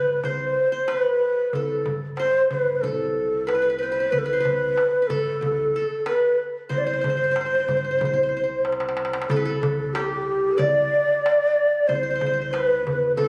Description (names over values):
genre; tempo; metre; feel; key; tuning
Arabic maqam ensemble; 93 BPM; 4/4; straight; unclear; A4 = 438 Hz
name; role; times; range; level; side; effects
breathy low ney; melody; 0.0-13.3 s; G4 to D5; -24 LUFS; equal; none
qanun; second line; 0.0-13.3 s; G4 to D5; -31 LUFS; equal; none
upright bass; bass; 0.0-13.3 s; C2 to G2; -40 LUFS; equal; none
darbuka; percussion; 0.2-13.3 s; none; -32 LUFS; equal; none
mellow hollow bansuri; second line; 9.3-13.3 s; G4 to D5; -30 LUFS; equal; none
room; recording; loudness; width
moderate recital hall reverb, RT60 1.4 s; recorded on a phone in the room, club reverb; -23 LUFS; mono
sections
0.0-9.3 A section; 9.3-13.3 B section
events
drum fill 8.7-9.3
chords
none